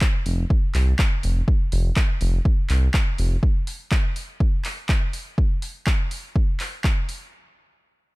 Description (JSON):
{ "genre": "deep house", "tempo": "123 BPM", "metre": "4/4", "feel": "swing 59% on 16ths", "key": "unclear", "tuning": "A4 = 437 Hz", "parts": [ { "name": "electronic kick drum", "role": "drums", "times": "0.0-7.0 s", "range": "none", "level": "-20 LUFS", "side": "equal", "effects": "overdrive" }, { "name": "punchy analog drum machine", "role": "drums", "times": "0.0-7.2 s", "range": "handclaps, hi-hat", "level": "-29 LUFS", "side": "equal", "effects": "overdrive" }, { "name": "smooth synth bass", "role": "bass", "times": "0.3-3.4 s", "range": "F1 to C2", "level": "-19 LUFS", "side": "equal", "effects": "sidechain pumping" } ], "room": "little or no reverb", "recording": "dark, warm production", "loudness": "-20 LUFS", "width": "side -23 dB against mid", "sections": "0.0-7.3 A section", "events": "none", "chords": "none" }